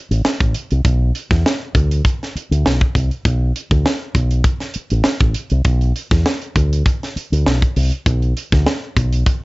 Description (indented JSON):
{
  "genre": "funk",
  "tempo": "100 BPM",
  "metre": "4/4",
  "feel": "straight",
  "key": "unclear",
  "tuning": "A4 = 439 Hz",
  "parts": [
    { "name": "fingered electric bass with an envelope filter", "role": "bass", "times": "0.1-9.2 s", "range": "A1 to E2", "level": "-16 LUFS", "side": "equal", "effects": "none" },
    { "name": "tight funk drum kit", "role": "drums", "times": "0.1-9.4 s", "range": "hi-hat, kick drum, snare drum", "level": "-17 LUFS", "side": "equal", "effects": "none" }
  ],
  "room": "light reverb",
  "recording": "nothing above 7.7 kHz",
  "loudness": "-15 LUFS",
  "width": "side -23 dB against mid",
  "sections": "0.0-9.4 A section",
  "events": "none",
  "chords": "none",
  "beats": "0.24 | 0.84 1.45 2.05 2.65 | 3.25 3.85 4.45 5.05 | 5.66 6.26 6.86 7.46 | 8.06 8.67 9.27"
}